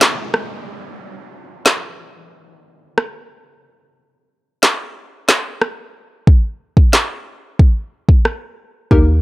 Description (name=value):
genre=dancehall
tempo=91 BPM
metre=4/4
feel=straight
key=unclear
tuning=A4 = 440 Hz
part: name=afro-pop drum kit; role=drums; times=0.0-9.1 s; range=handclaps, kick drum, rim click, snare drum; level=-11 LUFS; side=equal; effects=none
part: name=downlifter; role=sound effects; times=0.0-3.6 s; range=none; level=-34 LUFS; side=right 1 dB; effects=none
part: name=hollow square pluck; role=accompaniment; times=8.9-9.1 s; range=Bb3 to Bb4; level=-16 LUFS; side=left 2 dB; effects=chorus
part: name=warm 808-style bass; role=bass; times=8.9-9.2 s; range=Eb2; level=-13 LUFS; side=equal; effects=none
room=digital ambience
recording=dry, gritty hardware recording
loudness=-14 LUFS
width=side -20 dB against mid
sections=0.0-9.2 A section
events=none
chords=none